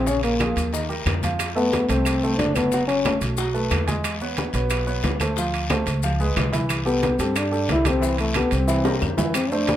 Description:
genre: Afro-Cuban jazz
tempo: 181 BPM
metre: 4/4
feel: straight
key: C major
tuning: A4 = 441 Hz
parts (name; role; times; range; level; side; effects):
- dark trombone; melody; 0.0-3.2, 6.9-9.8 s; A3 to E4; -22 LUFS; left 2 dB; plate reverb
- warm grand piano; accompaniment; 0.0-9.8 s; Db3 to Ab5; -26 LUFS; right 1 dB; none
- upright bass; bass; 0.0-9.8 s; F#1 to G2; -26 LUFS; equal; none
- bongos; percussion; 0.1-9.8 s; none; -32 LUFS; left 6 dB; none
- congas; percussion; 0.1-9.8 s; none; -30 LUFS; equal; none
- guiro; percussion; 0.1-9.8 s; none; -35 LUFS; left 5 dB; none
- maracas; percussion; 0.1-9.8 s; none; -37 LUFS; left 8 dB; none
- timbales; percussion; 0.2-9.8 s; none; -31 LUFS; right 7 dB; none
- claves; percussion; 0.4-9.5 s; none; -33 LUFS; right 2 dB; none
room: moderate club reverb, RT60 0.6 s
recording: none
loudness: -20 LUFS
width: side -12 dB against mid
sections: 0.0-9.3 A section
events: drum fill 8.9-9.3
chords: 0.1 Bbm7; 0.7 Ebadd9; 1.4 Fmaj7; 2.7 F#m; 3.4 B5; 4.0 E6; 5.4 Dm7; 6.0 Db7; 6.7 C6; 8.7 C7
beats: | 0.07 0.40 0.73 1.06 | 1.39 1.73 2.06 2.39 | 2.72 3.05 3.38 3.71 | 4.04 4.38 4.71 5.04 | 5.37 5.70 6.03 6.37 | 6.70 7.03 7.36 7.69 | 8.02 8.35 8.69 9.02 | 9.35 9.68

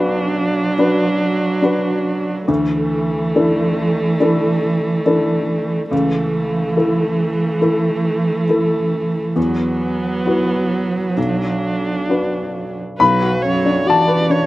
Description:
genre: neoclassical piano and strings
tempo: 70 BPM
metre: 4/4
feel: rubato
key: B minor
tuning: A4 = 441 Hz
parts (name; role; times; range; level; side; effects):
- dark cello; second line; 0.0-14.5 s; E3 to F#3; -20 LUFS; right 2 dB; none
- dark baby grand piano; accompaniment; 0.0-14.5 s; B1 to B5; -18 LUFS; left 2 dB; none
- dark viola; accompaniment; 0.0-14.5 s; A3 to D5; -22 LUFS; right 1 dB; none
room: little or no reverb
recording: recorded outdoors, with no room sound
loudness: -15 LUFS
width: side -17 dB against mid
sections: 0.0-13.0 A section; 13.0-14.5 B section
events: none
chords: 0.0 Bm; 2.5 Dsus2; 5.9 A/C#; 9.4 Esus2; 11.2 Bm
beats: 0.79 1.63 | 2.48 3.34 4.20 5.06 | 5.92 6.77 7.63 8.49 | 9.37 10.26 11.17 12.09 | 13.00 13.88

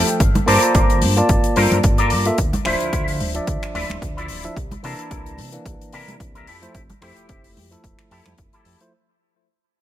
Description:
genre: nu-disco, nu disco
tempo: 110 BPM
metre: 4/4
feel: swing 55% on 16ths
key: unclear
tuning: A4 = 443 Hz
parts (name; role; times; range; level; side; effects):
- bright tine electric piano; accompaniment; 0.0-8.9 s; E3 to A5; -23 LUFS; equal; sidechain pumping, low-pass filter, ping-pong delay
- electric guitar with an envelope filter; riff; 0.0-8.8 s; D4 to G5; -23 LUFS; left 1 dB; ensemble chorus, low-pass filter, ping-pong delay
- fat analog bass; bass; 0.0-8.8 s; D1 to C3; -23 LUFS; equal; none
- damped 70s drum kit; drums; 0.1-8.9 s; finger snaps, hi-hat; -27 LUFS; left 5 dB; none
- electronic kick drum; drums; 0.2-8.5 s; none; -20 LUFS; equal; none
- congas; percussion; 0.4-8.4 s; none; -26 LUFS; right 1 dB; none
room: light reverb, studio reverb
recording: none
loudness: -16 LUFS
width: side -12 dB against mid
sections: 0.0-8.9 A section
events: fade-out 0.0-8.9; clean electric guitar fill 0.0; filter sweep on analog synth bass 0.0-8.9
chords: 0.2 Gm11; 2.4 Dm9; 4.6 C13; 6.5 Fmaj9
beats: | 0.20 0.75 1.29 1.84 | 2.38 2.93 3.48 4.02 | 4.57 5.11 5.66 6.20 | 6.75 7.29 7.84 8.38

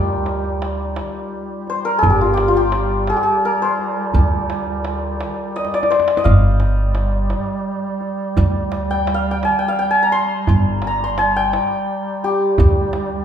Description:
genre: Persian modal ensemble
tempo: 57 BPM (dotted quarters)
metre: 6/8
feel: straight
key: G dastgah shur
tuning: A4 = 440 Hz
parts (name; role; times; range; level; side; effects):
- santur; melody; 0.0-13.2 s; Eb4 to C6; -18 LUFS; left 1 dB; none
- upright bass; bass; 0.0-13.2 s; G1 to D2; -19 LUFS; equal; none
- mellow duduk; drone; 0.0-13.2 s; G3; -25 LUFS; right 2 dB; none
- tombak; percussion; 0.3-13.2 s; none; -22 LUFS; right 2 dB; none
room: wet large studio reverb, RT60 1.3 s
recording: band playing live in one room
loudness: -16 LUFS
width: side -8 dB against mid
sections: 0.0-13.2 A section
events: drum fill 5.6-6.3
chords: none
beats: 0.98 | 2.04 3.09 | 4.15 5.20 | 6.26 7.31 | 8.37 9.42 | 10.48 11.53 | 12.59

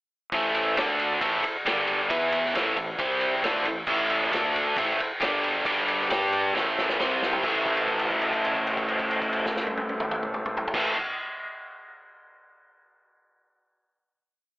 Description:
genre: blues rock power trio and southern rock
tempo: 135 BPM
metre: 4/4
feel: straight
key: A minor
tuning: A4 = 440 Hz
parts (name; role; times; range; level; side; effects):
- percussive tonewheel organ; sustained chords; 0.3-10.9 s; B3 to D5; -32 LUFS; equal; slow rotary speaker, overdrive
- biting overdriven guitar; riff; 0.3-11.0 s; G2 to G4; -25 LUFS; equal; none
- fuzz fingered electric bass; bass; 0.3-10.9 s; G1 to G2; -36 LUFS; equal; overdrive
- vintage drum kit; drums; 0.3-10.9 s; crash cymbal, kick drum, ride cymbal, snare drum, toms; -28 LUFS; equal; none
room: light reverb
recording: telephone sound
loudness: -23 LUFS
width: side -20 dB against mid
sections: 0.3-7.4 riff; 7.4-11.0 final chord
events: drum fill 6.5-7.4; held note 7.4-10.7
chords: 0.3 Am; 0.8 D5; 1.2 Am; 1.7 G5; 2.1 E5; 2.5 Am; 3.0 C5; 3.4 Am; 4.3 D5; 4.8 Am; 5.2 G5; 6.5 Am; 7.0 C5; 7.4 Am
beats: | 0.33 0.78 1.22 1.66 | 2.11 2.55 2.99 3.43 | 3.88 4.32 4.76 5.21 | 5.65 6.09 6.54 6.99 | 7.43 7.88 8.32 8.77 | 9.22 9.67 10.12 10.57

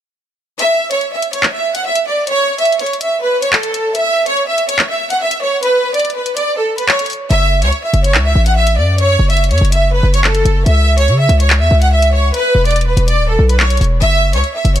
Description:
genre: hip hop, drill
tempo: 143 BPM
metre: 4/4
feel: half-time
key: F# minor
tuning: A4 = 441 Hz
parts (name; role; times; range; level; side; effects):
- bright studio violin section; melody; 0.6-14.8 s; A4 to F#5; -14 LUFS; right 1 dB; none
- drill drum kit; drums; 0.6-14.8 s; handclaps, hi-hat; -17 LUFS; left 1 dB; none
- hard-hitting 808-style bass; bass; 7.3-14.8 s; D1 to C#3; -12 LUFS; equal; none
room: digital ambience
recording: dark, warm production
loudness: -11 LUFS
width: side -11 dB against mid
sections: 0.6-14.8 A section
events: kick muted 0.6-7.3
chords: 0.6 N.C.; 7.3 F#m; 10.7 C#m; 12.3 E5; 14.0 F#5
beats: | 0.59 1.01 1.43 1.85 | 2.27 2.69 3.11 3.53 | 3.95 4.37 4.79 5.21 | 5.63 6.05 6.47 6.88 | 7.30 7.72 8.14 8.56 | 8.98 9.40 9.82 10.24 | 10.66 11.08 11.50 11.92 | 12.34 12.76 13.18 13.60 | 14.02 14.44

